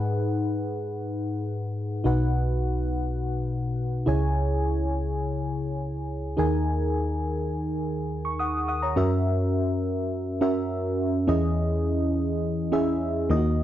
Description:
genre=pop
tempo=104 BPM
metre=4/4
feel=straight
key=unclear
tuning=A4 = 440 Hz
part: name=mellow FM electric piano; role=solo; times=0.0-13.6 s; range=B1 to D#6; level=-24 LUFS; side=equal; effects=chorus
room=light reverb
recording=dry, close 1970s-style studio recording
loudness=-24 LUFS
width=side -12 dB against mid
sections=0.0-9.0 A section; 9.0-13.6 B section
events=none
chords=0.0 G#m7; 2.1 B; 4.1 C#m; 6.4 D#sus4; 9.0 F#7; 11.3 C#madd9/E

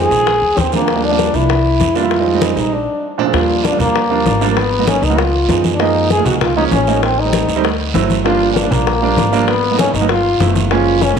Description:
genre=Afro-Cuban jazz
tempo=195 BPM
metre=4/4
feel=straight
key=Eb major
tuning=A4 = 440 Hz
part: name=warm French horn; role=melody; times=0.0-11.2 s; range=Bb3 to Ab4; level=-16 LUFS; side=left 1 dB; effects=none
part: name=warm grand piano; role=accompaniment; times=0.0-11.2 s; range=Bb2 to Gb4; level=-18 LUFS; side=right 9 dB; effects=none
part: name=upright bass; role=bass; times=0.0-11.2 s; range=Gb1 to Gb2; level=-20 LUFS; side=left 1 dB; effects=none
part: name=bongos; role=percussion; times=0.1-11.2 s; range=none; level=-22 LUFS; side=left 12 dB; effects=none
part: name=guiro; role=percussion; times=0.1-11.2 s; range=none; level=-27 LUFS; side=right 10 dB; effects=none
part: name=congas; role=percussion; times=0.3-11.2 s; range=none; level=-23 LUFS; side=left 2 dB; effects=none
room=wet echo chamber reverb, RT60 2.1 s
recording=1960s-style stereo with parts hard left and right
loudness=-12 LUFS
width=side -7 dB against mid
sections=0.0-3.3 A section; 3.3-11.2 B section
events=break 2.7-3.3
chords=0.3 Bb7; 0.9 Ebmaj9; 1.5 C7; 2.1 Fm7; 2.7 Bb7; 3.3 Ebmaj9; 4.6 Abm9; 5.2 Db9; 5.8 Gbmaj13; 7.0 Am7b5; 7.6 D7; 8.3 Gm7; 9.5 Abm9; 10.1 G13

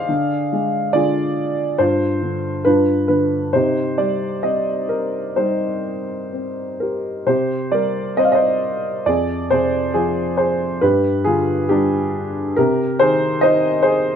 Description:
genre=classical, lyrical solo piano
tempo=61-72 BPM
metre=4/4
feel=rubato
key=C minor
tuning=A4 = 440 Hz
part: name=dark grand piano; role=solo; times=0.0-14.2 s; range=F2 to F5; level=-16 LUFS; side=equal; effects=none
room=light reverb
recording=close, detailed microphones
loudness=-16 LUFS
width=side -8 dB against mid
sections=0.0-7.3 A section; 7.3-14.2 A section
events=none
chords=0.1 Ddim; 1.8 G7sus4; 3.5 Cm; 9.1 Fm; 10.8 G5; 12.6 Cm

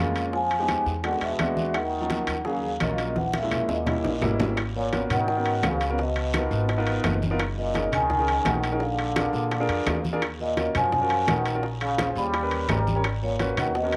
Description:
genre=Afro-Cuban jazz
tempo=170 BPM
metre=4/4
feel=straight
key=Eb minor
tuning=A4 = 445 Hz
part: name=vibraphone with soft mallets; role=melody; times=0.0-14.0 s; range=Db5 to Cb6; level=-30 LUFS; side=equal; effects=none
part: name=trombone with plunger mute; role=second line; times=0.0-14.0 s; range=Bb2 to G3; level=-35 LUFS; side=equal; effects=none
part: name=warm grand piano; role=accompaniment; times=0.0-14.0 s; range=F3 to Db5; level=-33 LUFS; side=equal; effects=none
part: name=upright bass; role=bass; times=0.0-14.0 s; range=Gb1 to Bb2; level=-32 LUFS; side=equal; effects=none
part: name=congas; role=percussion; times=0.2-14.0 s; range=none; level=-35 LUFS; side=equal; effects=none
part: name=guiro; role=percussion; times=0.2-14.0 s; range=none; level=-46 LUFS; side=equal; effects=none
part: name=timbales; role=percussion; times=0.2-14.0 s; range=none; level=-35 LUFS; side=equal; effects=none
part: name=bongos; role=percussion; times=0.3-13.9 s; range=none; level=-38 LUFS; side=equal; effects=none
part: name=claves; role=percussion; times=0.7-13.7 s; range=none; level=-39 LUFS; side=equal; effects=none
room=moderate spring reverb, RT60 2.2 s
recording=none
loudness=-25 LUFS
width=mono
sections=0.0-4.6 A section; 4.6-14.0 B section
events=drum fill 3.2-4.6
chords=0.3 Fm7b5; 1.0 E9; 1.7 Ebm7; 3.2 Bbm7b5; 3.9 Eb7b9; 4.6 Abm11; 6.0 Db13; 7.4 Gb69; 8.8 Bb7; 10.2 Ebm9; 11.6 Bbm9; 12.3 Eb7b13; 13.0 Abm11

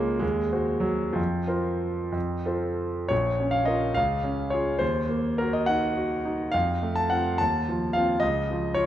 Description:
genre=classical, romantic character piece for solo piano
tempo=60-75 BPM (dotted quarters)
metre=6/8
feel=rubato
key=Bb minor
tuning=A4 = 440 Hz
part: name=clear concert grand piano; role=solo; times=0.0-8.9 s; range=Bb1 to A5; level=-23 LUFS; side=equal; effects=none
room=moderate scoring stage reverb, RT60 1.7 s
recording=none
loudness=-24 LUFS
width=side -11 dB against mid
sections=0.0-3.1 A section; 3.1-8.9 B section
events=none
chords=0.2 Cdim/Eb; 1.2 Fsus4; 2.1 F; 3.1 Bbm; 4.0 Db; 4.8 Ebm; 6.5 F; 7.4 F7/Eb; 8.2 Bbm/Db (rootless)

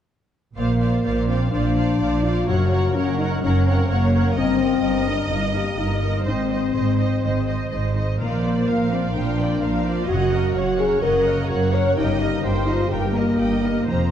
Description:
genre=cinematic, heroic adventure film score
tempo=127 BPM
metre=4/4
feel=straight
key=unclear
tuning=A4 = 439 Hz
part: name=warm symphonic violin section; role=melody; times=0.6-14.1 s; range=Db5 to Bb5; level=-34 LUFS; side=left 3 dB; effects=none
part: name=rich symphonic viola section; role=accompaniment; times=0.6-14.1 s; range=Gb4 to Gb5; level=-31 LUFS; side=right 3 dB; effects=none
part: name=dark French horn section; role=sustained chords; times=0.6-14.1 s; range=Bb3 to Db5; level=-22 LUFS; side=left 2 dB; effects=none
part: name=concert harp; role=arpeggios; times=0.6-14.1 s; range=F2 to C5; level=-28 LUFS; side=left 6 dB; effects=none
part: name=rich symphonic cello section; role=bass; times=0.6-14.1 s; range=F2 to Bb2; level=-26 LUFS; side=right 2 dB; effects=none
part: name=rich symphonic double bass section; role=bass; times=0.6-14.1 s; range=F1 to Bb1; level=-25 LUFS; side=right 3 dB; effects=none
part: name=rich chamber violin section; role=second line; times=1.5-14.1 s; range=Bb4 to G5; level=-30 LUFS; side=equal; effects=none
room=moderate scoring stage reverb, RT60 2.0 s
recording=dark, warm production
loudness=-18 LUFS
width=side -9 dB against mid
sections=0.6-14.1 A section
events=none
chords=0.6 Bbadd9; 2.5 Gb; 4.4 Eb/G; 6.3 Ab; 8.2 Bbadd9; 10.1 Gb; 12.0 Eb/G

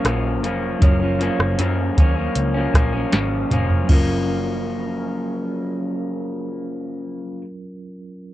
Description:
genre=indie pop, bedroom pop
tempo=78 BPM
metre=4/4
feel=straight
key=F# major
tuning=A4 = 440 Hz
part: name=electric guitar through a small old amp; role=accompaniment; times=0.0-7.4 s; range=F#2 to C#4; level=-24 LUFS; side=left 2 dB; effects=wide subtle chorus, vibrato effect
part: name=mellow tine electric piano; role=accompaniment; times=0.0-8.3 s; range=F#3 to C#5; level=-28 LUFS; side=right 2 dB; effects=medium stereo tremolo, cassette tape
part: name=vintage muted picked electric bass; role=bass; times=0.0-7.4 s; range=E#1 to F#2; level=-24 LUFS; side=equal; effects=none
part: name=soft vintage rhythm box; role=drums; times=0.0-4.1 s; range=crash cymbal, hi-hat, kick drum, rim click, snare drum, toms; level=-17 LUFS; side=equal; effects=vintage 12-bit sampler grit
room=little or no reverb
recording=cassette tape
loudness=-18 LUFS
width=side -14 dB against mid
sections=0.0-3.9 A section; 3.9-7.0 B section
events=drum fill 3.1-3.9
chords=0.0 F#maj7

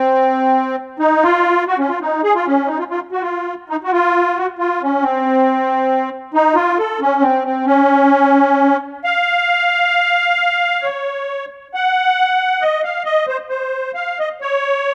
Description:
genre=alpine folk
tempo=135 BPM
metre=3/4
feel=straight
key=unclear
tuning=A4 = 442 Hz
part: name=musette accordion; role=solo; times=0.0-14.9 s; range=C4 to Gb5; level=-16 LUFS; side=equal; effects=tape echo
room=moderate studio reverb, RT60 0.6 s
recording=dark, warm production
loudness=-16 LUFS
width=mono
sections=0.0-9.0 A section; 9.0-14.9 B section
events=none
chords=none

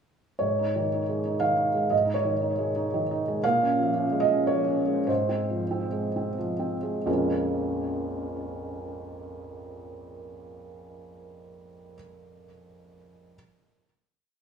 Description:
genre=neoclassical minimalist piano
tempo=85-121 BPM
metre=3/4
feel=rubato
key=Bb minor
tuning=A4 = 442 Hz
part: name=felt-muted upright piano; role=solo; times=0.4-13.4 s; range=Bb1 to F5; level=-25 LUFS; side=right 1 dB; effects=tape echo
room=light reverb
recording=studio reverb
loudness=-24 LUFS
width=side -6 dB against mid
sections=0.4-7.1 A section; 7.1-11.2 final chord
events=slowing down 2.7-7.1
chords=0.4 Absus4; 3.4 Bbm7; 5.1 Fm/Ab; 7.1 Bbm7

